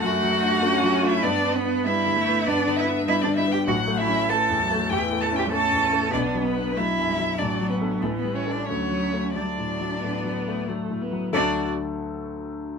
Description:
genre	quick classical-period movement for piano quartet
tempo	89-100 BPM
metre	4/4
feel	rubato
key	D major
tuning	A4 = 443 Hz
part	rich violin	melody	0.0-11.7 s	A4 to A5	-28 LUFS	left 4 dB	none
part	warm cello	second line	0.0-11.7 s	A3 to A4	-25 LUFS	right 5 dB	none
part	clear concert grand piano	accompaniment	0.0-12.8 s	A1 to A4	-26 LUFS	left 3 dB	none
part	rich viola	accompaniment	0.0-11.7 s	E3 to F#4	-29 LUFS	right 1 dB	none
room	moderate studio reverb, RT60 0.5 s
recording	minimal, uncompressed stereo recording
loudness	-21 LUFS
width	side -5 dB against mid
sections	0.0-11.3 A section; 11.3-12.8 B section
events	none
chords	0.0 D/F#; 1.2 Em7/G; 3.7 A; 6.1 Bm; 7.4 D/A; 8.0 A7; 8.7 D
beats	0.03 0.63 | 1.23 1.85 2.46 3.06 | 3.67 4.30 4.91 5.51 | 6.12 6.76 7.38 8.01 | 8.67 9.35 10.02 10.67 | 11.33 11.97 12.60

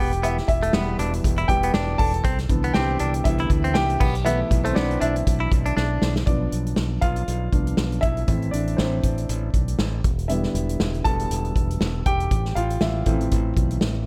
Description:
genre	piano-driven pop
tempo	119 BPM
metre	4/4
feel	swing 56% on 16ths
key	A minor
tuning	A4 = 440 Hz
part	warm baby grand piano	accompaniment	0.0-14.1 s	D3 to A5	-28 LUFS	equal	none
part	direct-recorded clean electric guitar	riff	0.0-6.1 s	A3 to E4	-30 LUFS	equal	none
part	modern bright fingered electric bass	bass	0.0-14.0 s	E1 to D2	-28 LUFS	equal	none
part	natural country drum kit	drums	0.1-13.9 s	crash cymbal, hi-hat, kick drum, snare drum	-26 LUFS	equal	none
room	studio reverb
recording	none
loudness	-22 LUFS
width	mono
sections	0.0-6.3 A section; 6.3-14.1 B section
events	grand piano solo 0.0-6.3, 6.3-14.1; drum fill 5.8-6.3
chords	0.0 Em; 2.2 Cmaj7; 4.0 G6/B; 6.3 Bdim; 8.3 Am; 10.0 Em7; 12.3 Am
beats	| 0.23 0.73 1.24 1.74 | 2.25 2.75 3.25 3.75 | 4.26 4.76 5.26 5.77 | 6.27 6.77 7.28 7.78 | 8.28 8.79 9.29 9.79 | 10.30 10.80 11.30 11.81 | 12.31 12.81 13.32 13.82

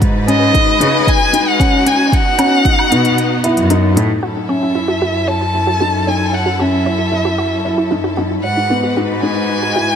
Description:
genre	piano and strings electronica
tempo	114 BPM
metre	4/4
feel	straight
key	F# dorian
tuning	A4 = 441 Hz
part	clear symphonic string section	sustained chords	0.0-10.0 s	F#3 to B4	-23 LUFS	left 2 dB	sidechain pumping
part	clear symphonic cello section	bass	0.0-10.0 s	F#2 to C#3	-19 LUFS	equal	sidechain pumping
part	electronic hi-hat and woodblock	drums	0.0-4.1 s	none	-24 LUFS	right 2 dB	overdrive
part	electronic kick drum	drums	0.0-2.8 s	none	-15 LUFS	equal	none
part	rich violin	melody	0.3-10.0 s	D#5 to A5	-17 LUFS	equal	none
part	felt-muted upright piano	riff	0.3-10.0 s	B3 to E4	-18 LUFS	left 1 dB	ping-pong delay
part	wide unison pluck	arpeggios	4.2-9.8 s	D#4 to C#5	-23 LUFS	right 3 dB	cassette tape, sidechain pumping, ping-pong delay
room	light reverb, small room ambience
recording	none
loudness	-12 LUFS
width	side -8 dB against mid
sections	0.0-4.2 A section; 4.2-10.0 B section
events	kick drops out 3.2-4.2; filter sweep on synth arpeggio sound 4.2-10.0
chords	0.0 G#m7; 2.1 B; 4.2 F#m7; 8.4 G#m7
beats	| 0.02 0.54 1.07 1.60 | 2.12 2.65 3.17 3.70 | 4.23 4.75 5.28 5.81 | 6.33 6.86 7.39 7.91 | 8.44 8.96 9.49

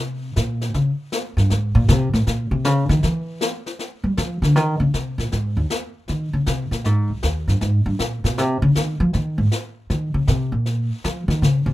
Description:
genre	jazz piano trio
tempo	157 BPM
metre	4/4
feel	swing 66% on 8ths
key	F minor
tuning	A4 = 440 Hz
part	upright bass	bass	0.0-11.7 s	C2 to G3	-18 LUFS	equal	none
part	snare drum and brushed snare drum	drums	0.4-11.7 s	none	-27 LUFS	left 3 dB	none
room	little or no reverb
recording	minimal, uncompressed stereo recording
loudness	-18 LUFS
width	side -16 dB against mid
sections	0.0-3.8 A section; 3.8-11.7 A section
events	upright bass solo 0.0-11.7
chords	none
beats	0.36 | 0.74 1.12 1.50 1.88 | 2.26 2.65 3.03 3.41 | 3.79 4.17 4.55 4.93 | 5.32 5.70 6.08 6.46 | 6.84 7.22 7.60 7.99 | 8.37 8.75 9.13 9.51 | 9.89 10.27 10.66 11.04 | 11.42

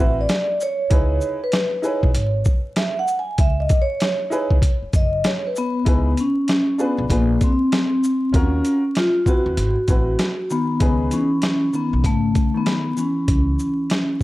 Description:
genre	hip hop, jazz-hop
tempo	97 BPM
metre	4/4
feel	swing 64% on 16ths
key	C# minor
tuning	A4 = 443 Hz
part	vibraphone with soft mallets	melody	0.0-14.2 s	A3 to G#5	-21 LUFS	equal	none
part	warm upright piano	accompaniment	0.0-11.3 s	B#3 to B4	-26 LUFS	left 1 dB	none
part	upright bass	bass	0.0-13.5 s	F#1 to D#2	-22 LUFS	equal	none
part	boom bap sampler-style drum kit	drums	0.3-14.2 s	hi-hat, kick drum, shaker, snare drum	-20 LUFS	equal	none
part	mellow electric guitar	second line	10.5-14.2 s	C#3 to E3	-28 LUFS	equal	spring reverb
room	little or no reverb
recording	dry, gritty hardware recording, vinyl crackle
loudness	-17 LUFS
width	side -17 dB against mid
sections	0.0-5.9 A section; 5.9-14.2 B section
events	vibraphone solo 0.0-5.9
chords	0.0 G#7#9b13 (rootless); 0.9 C#m9; 7.1 A#7b9; 8.3 D#m9; 9.6 G#7alt; 10.8 C#m9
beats	0.29 | 0.91 1.53 2.15 2.77 | 3.38 4.00 4.62 5.24 | 5.86 6.48 7.10 7.71 | 8.33 8.95 9.57 10.19 | 10.81 11.43 12.04 12.66 | 13.28 13.90

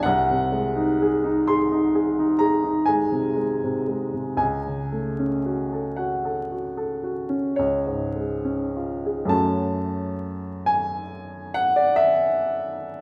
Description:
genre	classical, romantic nocturne for solo piano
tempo	32-47 BPM (dotted quarters)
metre	9/8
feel	rubato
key	F# minor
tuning	A4 = 439 Hz
part	warm upright piano	solo	0.0-13.0 s	B#1 to B#5	-24 LUFS	equal	none
room	wet recital hall reverb, RT60 1.6 s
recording	vinyl crackle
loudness	-24 LUFS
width	mono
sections	0.0-9.3 A section; 9.3-13.0 B section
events	none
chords	0.1 G#7/B#; 4.4 F#m/C#; 7.6 C#; 9.3 F#m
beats	| 0.05 1.47 2.88 | 4.42 6.00 7.59 | 9.33 10.69 12.01

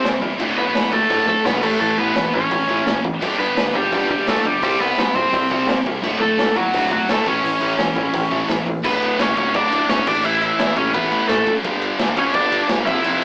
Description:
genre	punk rock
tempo	171 BPM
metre	4/4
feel	straight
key	D major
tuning	A4 = 440 Hz
part	crunchy overdriven guitar	melody	0.0-13.2 s	F#3 to E5	-18 LUFS	equal	none
part	distorted electric guitar	riff	0.0-8.8 s	D2 to C4	-26 LUFS	equal	none
part	high-gain distorted guitar	riff	0.0-13.2 s	D2 to C5	-25 LUFS	equal	distortion
part	sludgy distorted guitar	riff	0.0-13.2 s	D2 to C4	-27 LUFS	left 1 dB	overdrive
part	growling picked electric bass	bass	0.0-13.2 s	D1 to E2	-28 LUFS	equal	overdrive
part	raw garage drum kit	drums	0.0-13.2 s	crash cymbal, hi-hat, kick drum, snare drum	-23 LUFS	equal	none
room	light reverb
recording	rough rehearsal-room recording, small speaker sound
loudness	-16 LUFS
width	side -28 dB against mid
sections	0.0-8.8 A section; 8.8-13.2 B section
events	none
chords	0.4 D; 1.6 A; 3.2 G; 4.6 C; 6.0 D; 7.3 A; 8.8 D5; 10.1 A; 11.6 G5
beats	0.04 | 0.39 0.75 1.10 1.45 | 1.80 2.16 2.51 2.86 | 3.21 3.56 3.92 4.27 | 4.62 4.97 5.33 5.68 | 6.03 6.38 6.73 7.08 | 7.43 7.79 8.14 8.49 | 8.84 9.19 9.54 9.89 | 10.24 10.59 10.94 11.29 | 11.64 11.99 12.34 12.69 | 13.04

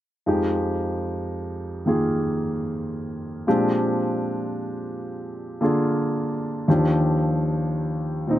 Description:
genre	jazz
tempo	75 BPM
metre	4/4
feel	swing 68% on 8ths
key	F minor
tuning	A4 = 440 Hz
part	clear grand piano	accompaniment	0.3-8.4 s	Eb2 to Ab4	-22 LUFS	equal	slapback echo
room	light reverb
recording	recorded outdoors, with no room sound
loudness	-22 LUFS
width	side -13 dB against mid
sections	0.2-8.4 A section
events	none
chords	0.2 Fm9; 3.5 Bb13; 6.7 Ebmaj7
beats	| 0.25 1.05 1.85 2.65 | 3.46 4.26 5.06 5.86 | 6.67 7.47 8.27

